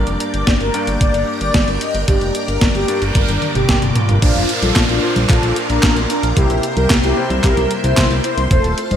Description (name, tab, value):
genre	italo disco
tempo	112 BPM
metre	4/4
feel	straight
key	G minor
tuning	A4 = 440 Hz
part	mellow synth brass	melody	0.0-9.0 s	D4 to Eb5	-20 LUFS	left 1 dB	chorus, ping-pong delay
part	string machine, full ensemble	sustained chords	0.0-9.0 s	A4 to D6	-25 LUFS	equal	ensemble chorus
part	warm electric grand piano	stabs	0.0-9.0 s	G2 to D5	-25 LUFS	left 1 dB	lush chorus
part	fat analog bass	bass	0.0-9.0 s	Eb1 to C2	-20 LUFS	equal	none
part	clean 12-bit digital drum machine	drums	0.1-9.0 s	congas, crash cymbal, handclaps, hi-hat, snare drum, toms	-19 LUFS	equal	gated reverb
part	electronic kick drum	drums	0.5-8.6 s	none	-16 LUFS	equal	none
part	noise sweep and downlifter	sound effects	2.6-8.5 s	none	-26 LUFS	right 2 dB	none
room	light reverb, digital ambience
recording	bright 1980s-style digital production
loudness	-13 LUFS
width	side -9 dB against mid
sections	0.0-4.2 A section; 4.2-9.0 B section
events	noise sweep 2.6-4.2; drum fill 3.2-4.2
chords	0.0 Gm; 4.2 Bbadd9; 6.4 C7